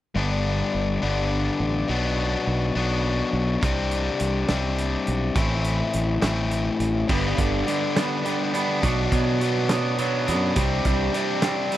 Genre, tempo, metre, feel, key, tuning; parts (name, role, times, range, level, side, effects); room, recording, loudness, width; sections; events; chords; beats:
indie rock; 69 BPM (dotted quarters); 6/8; straight; G major; A4 = 440 Hz
crunchy overdriven guitar; riff; 0.1-11.8 s; G2 to E4; -24 LUFS; left 4 dB
fingered electric bass; bass; 0.2-11.1 s; G1 to B2; -26 LUFS; right 1 dB
loose indie drum kit; drums; 3.6-11.8 s; crash cymbal, hi-hat, kick drum, snare drum; -27 LUFS; right 1 dB
twangy electric guitar; riff; 7.1-11.8 s; G2 to C4; -27 LUFS; right 12 dB; lush chorus
little or no reverb; dry, close 1970s-style studio recording; -21 LUFS; side -13 dB against mid
0.2-7.1 A section; 7.1-11.8 B section
0.2 G; 1.9 Bm; 3.6 Csus2; 5.4 Am; 7.1 G; 8.8 Bm; 10.6 Csus2
| 0.17 1.03 | 1.90 2.77 | 3.63 4.50 | 5.37 6.24 | 7.10 7.97 | 8.84 9.70 | 10.57 11.44